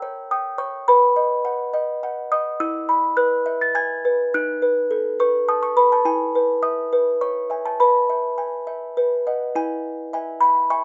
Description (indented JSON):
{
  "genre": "classical, lullaby for music box",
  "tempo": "104 BPM",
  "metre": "3/4",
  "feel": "straight",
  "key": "E major",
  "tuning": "A4 = 437 Hz",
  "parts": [
    { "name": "music box", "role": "solo", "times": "0.0-10.8 s", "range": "D#4 to A6", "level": "-21 LUFS", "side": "equal", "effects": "none" }
  ],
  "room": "moderate studio reverb, RT60 0.6 s",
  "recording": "rough home demo mix, nothing above 7.8 kHz",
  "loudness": "-21 LUFS",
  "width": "mono",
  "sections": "0.0-9.6 A section; 9.6-10.8 B section",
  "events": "none",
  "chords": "0.0 A#dim7; 0.9 B; 2.6 E; 4.3 B7/D#; 6.1 E; 7.2 C#m; 7.8 E/B; 9.0 B; 9.6 E"
}